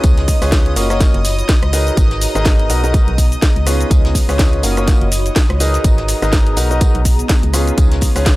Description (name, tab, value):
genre	piano house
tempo	124 BPM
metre	4/4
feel	swing 57% on 16ths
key	unclear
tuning	A4 = 440 Hz
part	analog string pad	sustained chords	0.0-8.4 s	D#5 to D#6	-26 LUFS	equal	ensemble chorus, sidechain pumping
part	clear grand piano	riff	0.0-8.4 s	A#3 to D#5	-21 LUFS	left 1 dB	sidechain pumping, analog delay
part	organ-like FM bass	bass	0.0-8.4 s	F#1 to C#2	-17 LUFS	equal	transformer saturation, sidechain pumping
part	electronic kick drum	drums	0.0-8.4 s	none	-13 LUFS	equal	none
part	house drum kit	drums	0.0-8.4 s	cabasa, hi-hat, rim click, snare drum	-21 LUFS	equal	none
part	jazz brush drum kit	drums	0.0-8.4 s	hi-hat, snare drum, tambourine	-31 LUFS	left 1 dB	none
part	ethereal airy pad	texture	0.0-8.4 s	B3 to A#5	-26 LUFS	right 1 dB	ensemble chorus, built-in reverb, sidechain pumping
room	small room ambience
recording	dry, gritty hardware recording, transformer saturation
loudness	-12 LUFS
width	side -18 dB against mid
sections	0.0-8.4 A section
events	none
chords	0.0 C#7; 0.8 F#; 2.0 G#madd9; 2.7 Bmaj7; 3.7 C#7; 4.6 F#; 5.8 G#madd9; 6.6 Bmaj7; 7.5 C#7